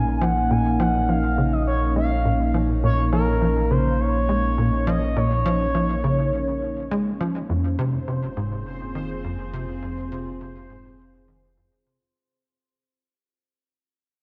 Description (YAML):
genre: ambient, sequencer-driven space music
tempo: 103 BPM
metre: 4/4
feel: straight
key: Bb minor, F minor from 7.5 s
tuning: A4 = 439 Hz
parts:
  - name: expressive synth lead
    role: melody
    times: 0.0-6.9 s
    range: Bb4 to Ab5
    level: -28 LUFS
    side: equal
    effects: chorus, tape echo
  - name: evolving wavetable pad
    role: sustained chords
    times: 0.0-12.2 s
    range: Bb2 to F5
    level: -30 LUFS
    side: equal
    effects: chorus, built-in reverb
  - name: tight sequencer bass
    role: riff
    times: 0.0-12.0 s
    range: F2 to Ab3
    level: -27 LUFS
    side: equal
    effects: lush chorus, cassette tape, tape echo
  - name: round analog bass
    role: bass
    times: 0.0-12.1 s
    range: F1 to Bb1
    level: -28 LUFS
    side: equal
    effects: none
  - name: bubbling stepped-filter texture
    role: texture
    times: 7.5-12.2 s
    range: C5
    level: -44 LUFS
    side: equal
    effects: chorus, built-in reverb
room: wet concert hall reverb, RT60 2.1 s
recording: dark, warm production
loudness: -23 LUFS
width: mono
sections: 0.0-7.5 A section; 7.5-12.2 B section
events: fade-out on analog synth bass 7.5-12.2; fade-out 7.5-12.2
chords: 0.0 Bbm; 7.5 Fm